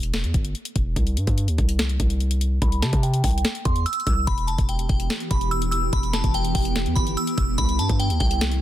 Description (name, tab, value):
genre	hip hop, trap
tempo	145 BPM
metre	4/4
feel	half-time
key	E minor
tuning	A4 = 440 Hz
part	hard-hitting 808-style bass	bass	0.0-8.6 s	E1 to C3	-23 LUFS	equal	none
part	trap drum kit	drums	0.0-8.6 s	hi-hat, kick drum, snare drum	-24 LUFS	equal	none
part	glassy synth bell	melody	2.6-8.4 s	G5 to E6	-27 LUFS	equal	chorus, phaser, low-pass filter
part	granular cloud pad	sustained chords	4.8-8.6 s	C3 to G4	-28 LUFS	right 2 dB	built-in reverb
room	little or no reverb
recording	dense, heavily limited modern master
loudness	-20 LUFS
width	side -13 dB against mid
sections	0.0-8.6 A section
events	break 0.0-2.6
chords	0.0 Em; 1.0 N.C.; 4.3 Em; 7.6 C6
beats	0.14 0.55 | 0.96 1.38 1.79 2.20 | 2.62 3.03 3.45 3.86 | 4.27 4.69 5.10 5.51 | 5.93 6.34 6.76 7.17 | 7.58 8.00 8.41